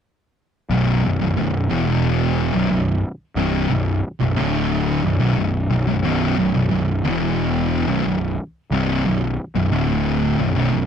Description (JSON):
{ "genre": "metal", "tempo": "90 BPM", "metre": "4/4", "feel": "straight", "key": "B phrygian", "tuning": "A4 = 440 Hz", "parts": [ { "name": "thick fuzz guitar", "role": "riff", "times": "0.7-10.9 s", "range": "B1 to E3", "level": "-21 LUFS", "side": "left 8 dB", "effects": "distortion" }, { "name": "thick fuzz guitar", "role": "riff", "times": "0.7-10.9 s", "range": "B1 to E3", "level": "-21 LUFS", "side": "right 8 dB", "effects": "distortion" }, { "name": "fuzz picked electric bass", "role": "bass", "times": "0.7-10.9 s", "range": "B0 to E1", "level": "-24 LUFS", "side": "equal", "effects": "overdrive" } ], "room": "little or no reverb", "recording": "dry, close 1970s-style studio recording", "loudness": "-18 LUFS", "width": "side -8 dB against mid", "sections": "0.7-10.9 A section", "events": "none", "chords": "0.7 B5; 1.7 E5; 2.5 B5; 4.4 D5; 5.0 B5; 7.0 E5; 7.9 B5; 9.7 D5", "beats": "| 0.71 1.38 2.04 2.71 | 3.38 4.04 4.71 5.38 | 6.04 6.71 7.38 8.05 | 8.72 9.38 10.05 10.72" }